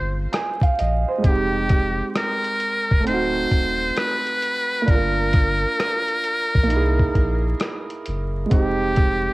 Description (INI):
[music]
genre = lo-fi hip hop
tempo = 66 BPM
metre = 4/4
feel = swing 65% on 16ths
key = F minor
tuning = A4 = 438 Hz
[part]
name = trumpet with metal mute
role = melody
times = 0.0-9.3 s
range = G4 to C5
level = -23 LUFS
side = equal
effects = cassette tape
[part]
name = warm upright piano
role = accompaniment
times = 0.0-9.3 s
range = Ab3 to Ab5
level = -25 LUFS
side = right 3 dB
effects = cassette tape
[part]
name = warm sub bass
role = bass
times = 0.0-9.3 s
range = D1 to C2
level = -24 LUFS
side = equal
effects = none
[part]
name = lo-fi sampler-style drum kit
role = drums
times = 0.3-9.2 s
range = hi-hat, kick drum, rim click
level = -20 LUFS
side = equal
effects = cassette tape
[sound]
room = light reverb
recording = home recording on cassette, vinyl crackle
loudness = -18 LUFS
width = side -20 dB against mid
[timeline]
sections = 0.0-1.2 A section; 1.2-9.3 B section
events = none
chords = 0.0 Fm9; 3.1 D7b9; 4.9 Gm7; 6.7 C7alt; 8.5 Fm9